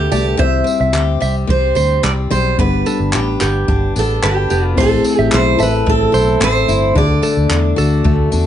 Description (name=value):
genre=acoustic pop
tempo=110 BPM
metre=4/4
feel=straight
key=unclear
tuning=A4 = 440 Hz
part: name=picked steel-string acoustic guitar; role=melody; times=0.0-8.5 s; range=G4 to E5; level=-18 LUFS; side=right 3 dB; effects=plate reverb
part: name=felt-muted upright piano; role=accompaniment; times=0.0-8.5 s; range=G3 to B5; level=-24 LUFS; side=left 3 dB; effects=none
part: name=picked steel-string acoustic guitar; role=accompaniment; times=0.0-8.5 s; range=G2 to A4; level=-20 LUFS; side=left 6 dB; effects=none
part: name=vintage muted fingered electric bass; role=bass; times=0.0-8.5 s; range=F1 to E2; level=-17 LUFS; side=equal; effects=none
part: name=direct-recorded clean electric guitar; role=arpeggios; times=0.1-8.3 s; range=G4 to E5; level=-22 LUFS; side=right 5 dB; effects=none
part: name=jazz brush drum kit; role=drums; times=0.1-8.4 s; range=crash cymbal, handclaps, kick drum, tambourine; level=-20 LUFS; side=equal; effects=none
room=moderate studio reverb, RT60 0.5 s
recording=nothing above 10.4 kHz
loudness=-12 LUFS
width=side -10 dB against mid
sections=0.0-4.8 A section; 4.8-8.5 B section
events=felt piano fill 4.0-4.8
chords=0.4 C; 2.6 G; 4.8 Am; 7.0 D